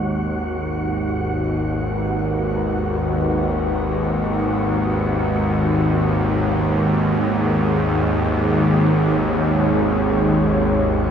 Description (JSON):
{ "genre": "dark ambient drone", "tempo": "free time", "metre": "none", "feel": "none", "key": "G# minor", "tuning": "A4 = 440 Hz", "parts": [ { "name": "deep dark ambient pad", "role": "sustained chords", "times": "0.0-11.1 s", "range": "G#3 to C#5", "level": "-24 LUFS", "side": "equal", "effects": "chorus, built-in reverb, shimmer reverb" }, { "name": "bowed-like drone", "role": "drone", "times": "0.0-11.1 s", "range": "G#1 to D#2", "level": "-19 LUFS", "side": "equal", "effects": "built-in reverb" }, { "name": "wind-like tuned noise texture", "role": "texture", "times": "0.0-11.1 s", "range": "F#4 to F#5", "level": "-28 LUFS", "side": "equal", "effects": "built-in reverb, shimmer reverb" } ], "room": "wet huge ambient reverb, RT60 8.4 s", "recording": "none", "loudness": "-17 LUFS", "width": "side -8 dB against mid", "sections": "0.0-11.1 A section", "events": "fade-in on ambient pad 0.0-11.1; fade-out on synth texture 0.0-11.1", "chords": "0.0 G#m7" }